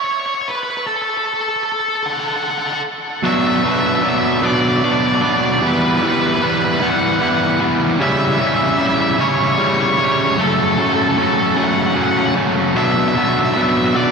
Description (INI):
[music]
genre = rock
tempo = 50 BPM (dotted quarters)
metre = 6/8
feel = straight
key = B minor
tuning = A4 = 438 Hz
[part]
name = cranked stack guitar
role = melody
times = 0.0-14.1 s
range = A4 to F#5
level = -18 LUFS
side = equal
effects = overdrive, ping-pong delay
[part]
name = distorted electric guitar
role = riff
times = 3.2-14.1 s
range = F#2 to E4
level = -15 LUFS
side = equal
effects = distortion
[sound]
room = wet huge ambient reverb, RT60 7.9 s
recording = dreamy mix soaked in reverb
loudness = -14 LUFS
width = side -5 dB against mid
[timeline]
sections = 0.0-3.2 A section; 3.2-14.1 B section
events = none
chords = 0.0 N.C.; 3.2 Bm; 5.6 Em; 8.0 C#dim; 10.4 F#m; 12.8 Bm